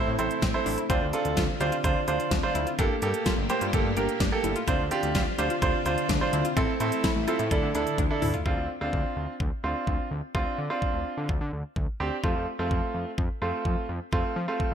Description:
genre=synth-pop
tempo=127 BPM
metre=4/4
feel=straight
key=D minor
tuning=A4 = 439 Hz
part: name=bright concert grand piano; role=accompaniment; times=0.0-14.7 s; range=A3 to C5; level=-28 LUFS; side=right 3 dB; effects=none
part: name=string machine, full ensemble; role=sustained chords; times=0.0-8.4 s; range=D3 to G4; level=-33 LUFS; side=left 1 dB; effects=ensemble chorus
part: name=fat analog bass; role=bass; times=0.0-14.7 s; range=G1 to F3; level=-31 LUFS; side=equal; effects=none
part: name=analog pluck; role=arpeggios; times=0.2-8.4 s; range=C4 to G4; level=-35 LUFS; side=left 8 dB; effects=chorus, ping-pong delay
part: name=pop drum kit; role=drums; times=0.2-14.7 s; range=hi-hat, kick drum, snare drum, toms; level=-29 LUFS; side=equal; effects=gated reverb
room=moderate plate reverb, RT60 1.6 s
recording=bright 1980s-style digital production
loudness=-24 LUFS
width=side -8 dB against mid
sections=0.0-8.5 A section; 8.5-14.7 B section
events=drum fill 8.0-8.5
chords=0.0 Am; 0.9 Dm7; 2.8 Gmadd9; 4.7 Dm7; 6.6 Am; 7.5 Dsus2; 8.5 Dm7; 12.2 F

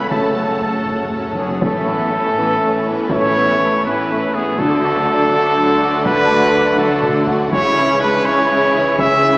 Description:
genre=cinematic, epic orchestral film score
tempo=81 BPM (dotted quarters)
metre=6/8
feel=straight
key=unclear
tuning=A4 = 440 Hz
part: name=warm symphonic violin section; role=melody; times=0.0-9.4 s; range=B3 to B5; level=-26 LUFS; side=equal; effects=none
part: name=warm studio violin section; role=second line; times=0.0-9.4 s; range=A3 to C#5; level=-23 LUFS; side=left 1 dB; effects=none
part: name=warm symphonic viola section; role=accompaniment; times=0.0-9.4 s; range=E3 to E4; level=-24 LUFS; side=equal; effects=none
part: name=bright trombone section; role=sustained chords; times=0.0-9.4 s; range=C#3 to A3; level=-24 LUFS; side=equal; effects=none
part: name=mellow French horn section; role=sustained chords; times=0.0-9.4 s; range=A3 to B4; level=-26 LUFS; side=equal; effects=none
part: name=rich symphonic string section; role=sustained chords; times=0.0-9.4 s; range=C#4 to G#5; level=-26 LUFS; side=equal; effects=none
part: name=clear trumpet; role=stabs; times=0.0-9.4 s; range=G#4 to E5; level=-16 LUFS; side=equal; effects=none
part: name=dark symphonic double bass section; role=bass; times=0.0-9.4 s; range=F#1 to D2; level=-30 LUFS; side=equal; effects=none
part: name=warm symphonic cello section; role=bass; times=0.0-9.4 s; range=F#2 to D3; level=-24 LUFS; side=equal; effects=none
part: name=taiko ensemble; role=drums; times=0.1-9.4 s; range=none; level=-25 LUFS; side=equal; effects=none
part: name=timpani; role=percussion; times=0.1-1.6 s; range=F#2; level=-28 LUFS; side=equal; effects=none
room=wet scoring stage reverb, RT60 1.9 s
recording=heard from further back in the room, small speaker sound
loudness=-13 LUFS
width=side -23 dB against mid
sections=0.0-1.6 A section; 1.6-9.4 B section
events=timpani fill 0.1-1.6; drum fill 6.8-7.5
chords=0.1 F#m; 1.6 Aadd9; 4.6 D; 7.5 C#m

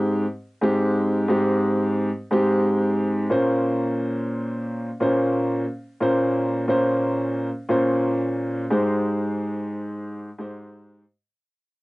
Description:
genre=hip hop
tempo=89 BPM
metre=4/4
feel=swing 57% on 16ths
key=Ab major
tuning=A4 = 439 Hz
part: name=dark grand piano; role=solo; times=0.0-11.0 s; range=Ab2 to C5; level=-20 LUFS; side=equal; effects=cassette tape, high-pass filter, low-pass filter
room=moderate booth ambience, RT60 0.2 s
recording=home recording on cassette, nothing above 10.9 kHz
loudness=-20 LUFS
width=side -20 dB against mid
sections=0.0-8.7 A section; 8.7-11.4 B section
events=fade-out 8.7-11.4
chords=0.0 Abmaj7; 3.3 Bbmadd9; 8.7 Abmaj7

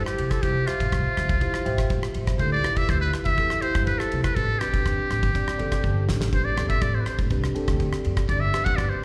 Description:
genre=electric jazz fusion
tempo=122 BPM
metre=4/4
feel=straight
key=D dorian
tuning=A4 = 438 Hz
part: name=trumpet with metal mute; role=melody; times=0.0-9.0 s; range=F4 to F#5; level=-29 LUFS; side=equal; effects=slapback echo, plate reverb
part: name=mellow tine electric piano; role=accompaniment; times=0.0-9.0 s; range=C4 to G5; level=-33 LUFS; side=equal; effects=subtle chorus, plate reverb, slapback echo
part: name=damped 70s drum kit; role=drums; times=0.1-8.9 s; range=kick drum, ride cymbal, rim click, snare drum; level=-30 LUFS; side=equal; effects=none
part: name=upright bass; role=bass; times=0.2-9.0 s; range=F#1 to D3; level=-29 LUFS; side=equal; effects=none
room=light reverb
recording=live gig heard through the venue's PA, recital hall reverb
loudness=-24 LUFS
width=mono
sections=0.0-9.0 A section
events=tine electric piano fill 1.4-2.4; drum fill 5.8-6.3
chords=0.0 Dm11; 4.4 Am11

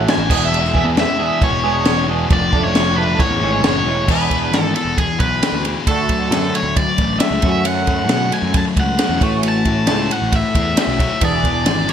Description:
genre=indie rock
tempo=134 BPM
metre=4/4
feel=straight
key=unclear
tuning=A4 = 439 Hz
part: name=electric guitar through a small old amp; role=riff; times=0.0-11.9 s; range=E3 to A4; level=-24 LUFS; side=right 8 dB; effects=ensemble chorus
part: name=sludgy distorted guitar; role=riff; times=0.0-11.9 s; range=A2 to C#5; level=-22 LUFS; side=left 7 dB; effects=overdrive
part: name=fuzz picked electric bass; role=bass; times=0.0-11.9 s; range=E1 to B2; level=-22 LUFS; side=equal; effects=overdrive
part: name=overdriven electric guitar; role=melody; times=0.1-11.9 s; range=G#4 to A5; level=-20 LUFS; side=equal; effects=none
part: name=compact cocktail drum kit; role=drums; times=0.1-11.9 s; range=crash cymbal, kick drum, ride cymbal, snare drum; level=-19 LUFS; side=equal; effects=gated reverb
room=light reverb, small room ambience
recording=bright 1980s-style digital production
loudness=-14 LUFS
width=side -8 dB against mid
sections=0.0-4.1 A section; 4.1-11.9 B section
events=none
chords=0.3 E7; 2.3 Dm/F; 3.2 Amaj7; 4.1 E7; 5.9 D; 7.4 F#m; 9.2 A6; 11.2 E7

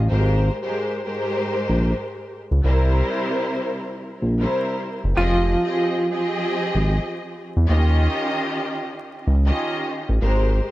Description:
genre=hip hop, boom-bap hip-hop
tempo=95 BPM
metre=4/4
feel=swing 59% on 16ths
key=unclear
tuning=A4 = 440 Hz
part: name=smooth synth bass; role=bass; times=0.0-10.6 s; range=F1 to E2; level=-18 LUFS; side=equal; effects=none
part: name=warm studio string section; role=accompaniment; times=0.1-10.7 s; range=Ab2 to Eb5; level=-24 LUFS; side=equal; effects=high-pass filter, low-pass filter
part: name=semi-hollow electric guitar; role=melody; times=5.2-7.7 s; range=F3 to F4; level=-24 LUFS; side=right 1 dB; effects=tremolo, high-pass filter, low-pass filter, analog delay
room=light reverb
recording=dry, gritty hardware recording, vinyl crackle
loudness=-19 LUFS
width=side -16 dB against mid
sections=0.0-10.7 A section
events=none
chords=0.1 Abmaj9; 2.6 C7; 5.2 Fm7; 7.7 Eb9

